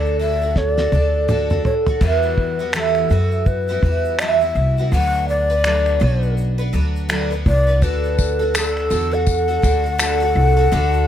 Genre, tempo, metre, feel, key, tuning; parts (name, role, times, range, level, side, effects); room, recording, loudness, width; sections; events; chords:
acoustic pop; 83 BPM; 4/4; swing 60% on 16ths; A4 = 440 Hz
breathy hollow long shakuhachi; melody; 0.0-11.1 s; A4 to F#5; -21 LUFS; left 3 dB
picked twelve-string acoustic guitar; accompaniment; 0.0-11.1 s; E2 to B4; -21 LUFS; right 3 dB
upright bass; bass; 0.0-11.1 s; B1 to F#2; -19 LUFS; equal
cloth-damped thuddy drum kit; drums; 0.1-11.1 s; crash cymbal, finger snaps, kick drum, shaker, snare drum, toms; -20 LUFS; equal
tambourine; percussion; 7.8-10.2 s; -29 LUFS; left 8 dB
little or no reverb; close, detailed microphones; -15 LUFS; side -10 dB against mid
0.0-2.0 A section; 2.0-11.1 B section
drum fill 0.6-2.0
0.0 D; 2.0 Emadd9; 4.9 Bm; 7.8 D